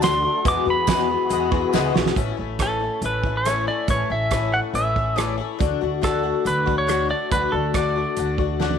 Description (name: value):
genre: folk rock and heartland rock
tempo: 140 BPM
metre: 4/4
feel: straight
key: A major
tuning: A4 = 441 Hz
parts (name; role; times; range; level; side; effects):
- pedal steel guitar; melody; 0.0-8.8 s; A4 to D6; -23 LUFS; right 2 dB; none
- picked twelve-string acoustic guitar; accompaniment; 0.0-8.8 s; E2 to F#4; -24 LUFS; left 12 dB; none
- tonewheel organ; sustained chords; 0.0-2.1 s; A3 to A4; -31 LUFS; right 2 dB; slow rotary speaker, overdrive, chorus vibrato
- upright bass; bass; 0.0-8.8 s; A1 to E2; -28 LUFS; right 1 dB; none
- loose indie drum kit; drums; 0.0-8.8 s; hi-hat, kick drum, rim click, snare drum, toms; -24 LUFS; right 4 dB; none
- tambourine; percussion; 0.0-1.8 s; none; -37 LUFS; right 19 dB; none
room: moderate echo chamber reverb, RT60 1.5 s, small room ambience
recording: 1960s-style stereo with parts hard left and right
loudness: -19 LUFS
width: side -7 dB against mid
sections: 0.0-2.2 A section; 2.2-8.8 B section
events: pedal steel guitar solo 0.0-2.2; drum fill 1.7-2.2, 8.6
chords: 0.5 Eadd9; 2.2 A; 5.6 D